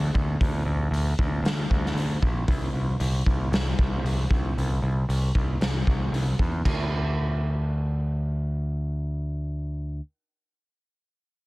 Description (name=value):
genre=quiet-loud alternative rock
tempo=115 BPM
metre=4/4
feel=straight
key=unclear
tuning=A4 = 440 Hz
part: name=growling picked electric bass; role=bass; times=0.0-10.0 s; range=Bb1 to E2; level=-25 LUFS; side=equal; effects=overdrive
part: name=raw garage drum kit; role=drums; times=0.2-6.8 s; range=china cymbal, hi-hat, kick drum, snare drum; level=-26 LUFS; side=equal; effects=none
room=little or no reverb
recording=dense, heavily limited modern master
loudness=-23 LUFS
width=side -21 dB against mid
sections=0.0-6.6 A section; 6.6-10.8 B section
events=none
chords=none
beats=| 0.40 0.92 1.44 1.96 | 2.48 3.00 3.52 4.04 | 4.56 5.08 5.60 6.12 | 6.64 7.17 7.69 8.21 | 8.73 9.26 9.78